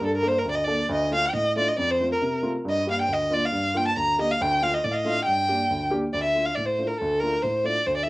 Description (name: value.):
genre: klezmer.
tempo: 138 BPM.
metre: 2/4.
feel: straight.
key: G minor.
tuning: A4 = 439 Hz.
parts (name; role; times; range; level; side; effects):
dark violin; melody; 0.0-8.1 s; A4 to Bb5; -23 LUFS; equal; cassette tape.
dark upright piano; accompaniment; 0.0-8.1 s; D2 to A4; -28 LUFS; equal; cassette tape.
room: wet small room reverb, RT60 0.5 s.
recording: home recording on cassette.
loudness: -22 LUFS.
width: side -20 dB against mid.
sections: 0.0-6.1 A section; 6.1-8.1 B section.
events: none.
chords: 0.0 Gm; 0.9 Dm; 1.8 F; 2.7 Gm; 4.4 Dm; 5.3 Gm; 6.1 Dm.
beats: | 0.02 0.46 | 0.90 1.34 | 1.78 2.22 | 2.66 3.10 | 3.53 3.97 | 4.40 4.84 | 5.27 5.71 | 6.14 6.57 | 7.00 7.43 | 7.87.